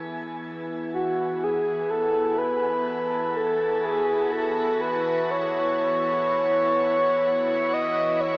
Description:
ambient; 62 BPM; 4/4; straight; E major; A4 = 440 Hz
shimmering ambient pad; sustained chords; 0.0-8.4 s; E3 to G#5; -33 LUFS; equal; chorus, built-in reverb
analog drone; drone; 0.0-8.4 s; E3 to B3; -32 LUFS; equal; chorus
breathy flute-like synth lead; melody; 0.9-8.4 s; F#4 to D#5; -22 LUFS; equal; chorus, tremolo, diffuse ambient delay
wet shimmer reverb, RT60 9.3 s; small speaker sound; -22 LUFS; side -26 dB against mid
0.0-8.4 A section
0.0 Eadd9

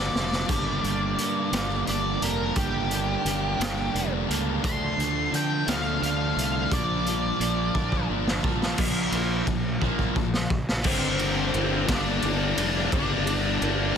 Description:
quiet-loud alternative rock; 58 BPM (dotted quarters); 6/8; straight; G minor; A4 = 439 Hz
octave-fuzz lead guitar; melody; 0.0-14.0 s; C4 to C6; -30 LUFS; equal; distortion, slapback echo
twelve-string electric guitar; arpeggios; 0.0-8.8 s; G2 to D4; -36 LUFS; right 9 dB; spring reverb
thick fuzz guitar; riff; 0.0-14.0 s; G2 to D4; -31 LUFS; left 13 dB; distortion
fuzz fingered electric bass; bass; 0.0-13.9 s; F1 to D3; -30 LUFS; equal; overdrive
raw garage drum kit; drums; 0.2-13.8 s; crash cymbal, hi-hat, kick drum, ride cymbal, snare drum, splash cymbal; -28 LUFS; equal
overdriven electric guitar; riff; 0.5-10.5 s; G2 to D4; -31 LUFS; right 13 dB
high-gain distorted guitar; riff; 10.8-14.0 s; G2 to D4; -29 LUFS; equal; distortion
small room ambience; dense, heavily limited modern master; -23 LUFS; side -7 dB against mid
0.0-8.8 A section; 8.8-10.9 B section; 10.9-14.0 C section
drum fill 0.0-0.5, 7.8-8.8, 9.8-10.9; lead electric guitar solo 0.0-8.8
0.5 Gm; 4.6 Dm; 6.7 Bb6; 8.8 Bb5; 10.9 Gm

